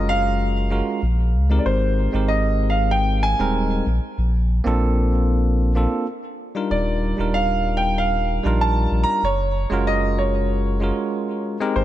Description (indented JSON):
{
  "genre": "sunset chillout",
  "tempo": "95 BPM",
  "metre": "4/4",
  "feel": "straight",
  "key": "unclear",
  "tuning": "A4 = 440 Hz",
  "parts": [
    { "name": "warm grand piano", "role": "melody", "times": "0.0-11.8 s", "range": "C5 to Bb5", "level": "-24 LUFS", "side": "right 2 dB", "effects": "digital delay" },
    { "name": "bell-like tine electric piano", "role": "accompaniment", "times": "0.0-11.8 s", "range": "G3 to Bb4", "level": "-24 LUFS", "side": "moving between left 4 dB and right 4 dB", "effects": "auto-pan, digital delay" },
    { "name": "warm sub bass", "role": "bass", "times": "0.0-11.8 s", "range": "Eb1 to Db2", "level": "-20 LUFS", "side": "equal", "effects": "none" }
  ],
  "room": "light reverb, small room ambience",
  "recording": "dark, warm production",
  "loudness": "-18 LUFS",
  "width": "side -13 dB against mid",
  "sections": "0.0-11.8 A section",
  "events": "none",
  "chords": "0.0 Gbmaj9; 1.7 Abmaj9; 3.9 Bbmaj9; 6.7 Ebmaj9; 9.2 Gbmaj9"
}